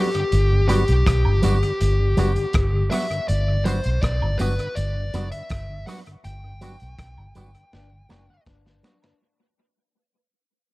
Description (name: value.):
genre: roots reggae.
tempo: 81 BPM.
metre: 4/4.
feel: straight.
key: G major.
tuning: A4 = 440 Hz.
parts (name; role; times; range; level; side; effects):
fuzz lead guitar; melody; 0.0-8.4 s; G4 to G5; -26 LUFS; left 2 dB; distortion, dub echo.
electric guitar with an envelope filter; accompaniment; 0.0-9.0 s; F#3 to F#4; -27 LUFS; right 2 dB; dub echo.
mellow tonewheel organ; accompaniment; 0.0-9.1 s; G2 to F#4; -29 LUFS; left 1 dB; slow rotary speaker.
crunchy breakbeat drum kit; drums; 0.1-9.2 s; hi-hat, kick drum, rim click, snare drum; -27 LUFS; equal; analog delay.
vintage muted fingered electric bass; bass; 0.3-8.8 s; F#1 to B1; -21 LUFS; equal; none.
tambourine and woodblock; percussion; 0.7-9.2 s; none; -38 LUFS; right 5 dB; none.
clear trombone; second line; 7.7-9.2 s; D4; -64 LUFS; left 8 dB; dub echo.
room: small room ambience.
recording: dark, warm production.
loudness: -19 LUFS.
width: side -20 dB against mid.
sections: 0.0-9.2 A section.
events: fade-out 0.0-9.2; band accent 6.2-9.2; drum fill 7.7-9.2.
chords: 0.0 Gmaj7.